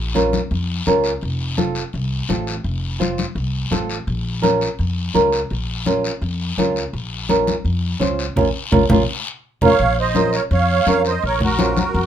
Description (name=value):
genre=latin, cumbia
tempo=168 BPM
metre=4/4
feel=straight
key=Bb harmonic minor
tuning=A4 = 440 Hz
part: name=upright bass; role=bass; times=0.0-12.1 s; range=F1 to F2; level=-23 LUFS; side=left 1 dB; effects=none
part: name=flamenco guitar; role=accompaniment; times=0.1-11.8 s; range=C4 to C5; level=-18 LUFS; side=right 2 dB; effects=none
part: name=congas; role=percussion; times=0.2-11.9 s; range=none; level=-21 LUFS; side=left 3 dB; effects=none
part: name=guiro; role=percussion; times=0.2-12.1 s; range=none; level=-30 LUFS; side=left 6 dB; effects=none
part: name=musette accordion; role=melody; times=9.6-12.1 s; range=Gb4 to F5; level=-18 LUFS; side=right 4 dB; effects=none
room=moderate studio reverb, RT60 0.5 s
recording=minimal, uncompressed stereo recording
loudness=-17 LUFS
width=side -10 dB against mid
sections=0.0-9.8 A section; 9.8-12.1 B section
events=band accent 8.4-9.8; drum fill 9.3-9.8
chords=0.0 Bbm; 1.2 F; 4.1 Bbm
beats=0.15 0.51 0.87 | 1.22 1.58 1.94 2.29 | 2.65 3.01 3.37 3.72 | 4.08 4.44 4.79 5.15 | 5.51 5.87 6.22 6.58 | 6.94 7.29 7.65 8.01 | 8.37 8.72 9.08 9.44 | 9.79 10.15 10.51 10.87 | 11.22 11.58 11.94